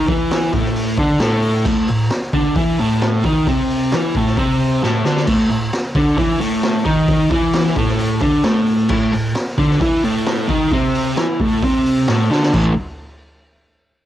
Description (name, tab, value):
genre	garage rock duo or trio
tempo	132 BPM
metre	4/4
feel	straight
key	unclear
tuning	A4 = 442 Hz
part	fuzz guitar	riff	0.0-12.7 s	A2 to E4	-15 LUFS	equal	distortion
part	raw garage drum kit	drums	0.1-12.6 s	crash cymbal, hi-hat, kick drum, snare drum	-21 LUFS	equal	none
room	light reverb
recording	home recording on cassette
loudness	-14 LUFS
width	side -12 dB against mid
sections	0.0-5.3 A section; 5.3-12.5 A section; 12.5-14.1 B section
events	drum fill 4.8-5.3, 12.3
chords	0.0 A5